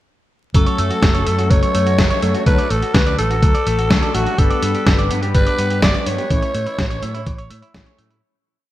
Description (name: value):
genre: italo disco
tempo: 125 BPM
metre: 4/4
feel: straight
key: F# phrygian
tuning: A4 = 441 Hz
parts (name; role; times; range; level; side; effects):
- raspy alto saxophone; melody; 0.5-7.7 s; F#4 to D5; -21 LUFS; left 1 dB; digital delay
- electric guitar with an envelope filter; arpeggios; 0.5-8.2 s; E3 to D5; -26 LUFS; right 3 dB; ping-pong delay
- mellow synth brass; stabs; 0.5-8.2 s; F#3 to C#5; -24 LUFS; left 2 dB; chorus
- fingered electric bass with an envelope filter; bass; 0.5-8.2 s; F#1 to A2; -21 LUFS; equal; tube saturation
- dusty soul sampler-style drum kit; drums; 0.5-8.2 s; hi-hat, snare drum; -22 LUFS; equal; gated reverb
- electronic kick drum; drums; 0.5-7.8 s; none; -17 LUFS; equal; none
room: light reverb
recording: bright 1980s-style digital production, vinyl crackle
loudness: -14 LUFS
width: side -14 dB against mid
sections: 0.5-8.2 verse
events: fade-out 5.7-8.2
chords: 0.5 F#m; 2.5 D; 4.4 G; 6.3 A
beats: | 0.55 1.02 1.50 1.99 | 2.46 2.94 3.42 3.90 | 4.38 4.87 5.34 5.83 | 6.30 6.79 7.26 7.75